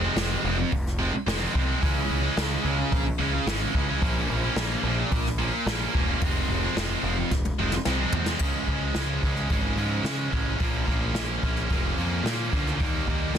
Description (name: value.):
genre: quiet-loud alternative rock.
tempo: 109 BPM.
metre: 4/4.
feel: straight.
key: F harmonic minor.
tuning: A4 = 439 Hz.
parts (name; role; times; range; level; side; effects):
high-gain distorted guitar; riff; 0.0-13.4 s; F2 to Eb4; -26 LUFS; right 1 dB; distortion.
fuzz picked electric bass; bass; 0.0-13.4 s; E1 to Db3; -29 LUFS; equal; overdrive.
jazz brush drum kit; drums; 0.2-13.4 s; crash cymbal, hi-hat, kick drum, snare drum, toms; -28 LUFS; equal; none.
room: little or no reverb.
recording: dense, heavily limited modern master.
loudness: -23 LUFS.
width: side -8 dB against mid.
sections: 0.0-8.4 A section; 8.4-13.4 B section.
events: drum fill 7.3-8.4.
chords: 0.0 Fm; 1.8 Dbm; 4.0 Bbm; 6.2 Fm; 8.4 Db; 10.6 Bbm; 12.8 Eb.